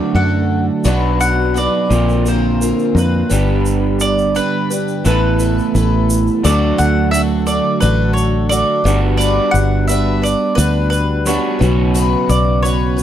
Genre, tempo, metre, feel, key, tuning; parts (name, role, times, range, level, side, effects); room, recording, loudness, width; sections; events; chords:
folk rock and heartland rock; 87 BPM; 4/4; straight; D major; A4 = 441 Hz
mandolin; melody; 0.0-13.0 s; B4 to F#5; -19 LUFS; right 1 dB
picked twelve-string acoustic guitar; accompaniment; 0.0-13.0 s; B2 to B4; -23 LUFS; left 9 dB
mellow tonewheel organ; sustained chords; 0.0-13.0 s; C#3 to Bb5; -28 LUFS; equal
electric guitar through a small old amp; riff; 0.0-13.0 s; G2 to A4; -18 LUFS; right 4 dB
warm grand piano; accompaniment; 0.1-13.0 s; G3 to Bb5; -29 LUFS; right 4 dB
fingered electric bass; bass; 0.1-13.0 s; G1 to F#2; -16 LUFS; left 1 dB
egg shaker; percussion; 0.8-13.0 s; -27 LUFS; right 4 dB
studio reverb; dry, close 1970s-style studio recording; -13 LUFS; side -10 dB against mid
0.0-6.4 A section; 6.4-13.0 B section
0.0 D; 0.9 Bm; 1.9 Bbadd9; 3.3 G; 5.0 Asus2; 6.4 D; 8.9 Gmaj7; 11.6 Bsus2